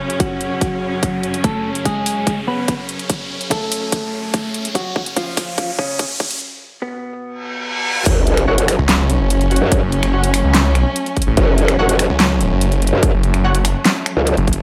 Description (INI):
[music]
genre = heavy wobble dubstep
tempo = 145 BPM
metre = 4/4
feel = half-time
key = F# harmonic minor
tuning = A4 = 439 Hz
[part]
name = clear studio string section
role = sustained chords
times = 0.0-14.6 s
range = F#2 to C#4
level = -27 LUFS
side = equal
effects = sidechain pumping
[part]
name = riser, reverse cymbal and sub drop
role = sound effects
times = 0.0-9.7 s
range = none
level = -28 LUFS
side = equal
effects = none
[part]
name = dubstep drum kit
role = drums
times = 0.1-14.6 s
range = crash cymbal, finger snaps, handclaps, hi-hat, snare drum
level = -22 LUFS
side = equal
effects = overdrive, high-pass filter on hats, high-pass filter on cymbals, high-pass filter on snare
[part]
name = clean electric guitar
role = melody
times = 0.2-8.0 s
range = B2 to B4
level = -26 LUFS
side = equal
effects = tape echo
[part]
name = electronic kick drum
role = drums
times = 0.2-14.6 s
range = none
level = -22 LUFS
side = equal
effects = overdrive
[part]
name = growl bass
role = bass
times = 8.1-14.4 s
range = F#1 to F#2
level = -17 LUFS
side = equal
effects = chorus, overdrive
[part]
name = orchestra-hit-like synth stab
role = stabs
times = 8.5-13.6 s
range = F#4 to F#5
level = -27 LUFS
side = equal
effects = built-in reverb, tape echo
[part]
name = snarling distorted saw bass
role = bass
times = 8.8-14.6 s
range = F#1 to C#2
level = -18 LUFS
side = equal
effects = distortion, overdrive
[sound]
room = light reverb, digital ambience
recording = high-pass filter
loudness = -17 LUFS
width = mono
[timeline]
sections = 0.0-8.1 A section; 8.1-14.6 B section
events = build-up 0.0-8.1; riser 0.0-6.4; filter sweep 0.0-8.1; drum fill 1.4-6.4; reverse cymbal 7.4-8.1; drop 8.1-14.6; impact 8.1-9.7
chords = 0.0 F#m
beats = 0.20 0.61 1.03 | 1.44 1.86 2.27 2.68 | 3.10 3.51 3.92 4.34 | 4.75 5.17 5.58 5.99 | 6.41 6.82 7.24 7.65 | 8.06 8.48 8.89 9.30 | 9.72 10.13 10.54 10.96 | 11.37 11.79 12.20 12.61 | 13.03 13.44 13.86 14.27